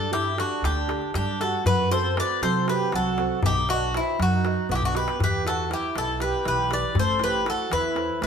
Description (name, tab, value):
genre	greek folk, Greek bouzouki band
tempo	237 BPM (eighths)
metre	7/8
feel	straight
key	E minor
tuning	A4 = 440 Hz
part	Greek bouzouki	melody	0.0-8.3 s	E4 to D5	-25 LUFS	left 3 dB	none
part	accordion	second line	0.0-8.3 s	C4 to B4	-30 LUFS	right 4 dB	light tremolo tuning
part	nylon-string guitar	accompaniment	0.0-8.3 s	B2 to D#5	-29 LUFS	right 5 dB	none
part	upright bass	bass	0.0-8.3 s	A1 to C3	-30 LUFS	equal	none
part	darbuka	percussion	0.1-8.3 s	none	-29 LUFS	left 2 dB	none
room	wet stone room reverb, RT60 1.0 s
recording	band playing live in one room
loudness	-22 LUFS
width	side -7 dB against mid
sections	0.0-8.3 A section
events	drum fill 4.7-5.2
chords	0.0 Gsus2; 1.6 F#dim; 3.4 B; 5.2 Em; 7.0 Am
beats	0.12 0.37 0.63 0.88 1.14 1.39 | 1.65 1.90 2.16 2.41 2.67 2.92 3.17 | 3.43 3.68 3.94 4.19 4.44 4.70 4.95 | 5.20 5.46 5.71 5.96 6.21 6.47 6.72 | 6.97 7.22 7.47 7.72 7.98 8.23